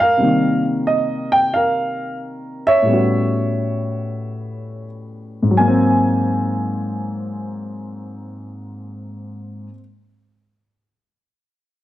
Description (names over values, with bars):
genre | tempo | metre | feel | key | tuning
solo jazz | 90 BPM | 4/4 | swing 69% on 8ths | Ab mixolydian | A4 = 440 Hz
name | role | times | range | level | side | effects
dark grand piano | solo | 0.0-9.8 s | Ab2 to Ab5 | -17 LUFS | equal | none
room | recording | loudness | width
light reverb | none | -16 LUFS | side -14 dB against mid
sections
0.0-5.6 A section; 5.6-8.2 B section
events
none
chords
0.2 Cm7; 2.9 A13; 5.6 Ab9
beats
| 0.20 0.87 1.54 2.21 | 2.88 3.55 4.21 4.88 | 5.55 6.22 6.89 7.56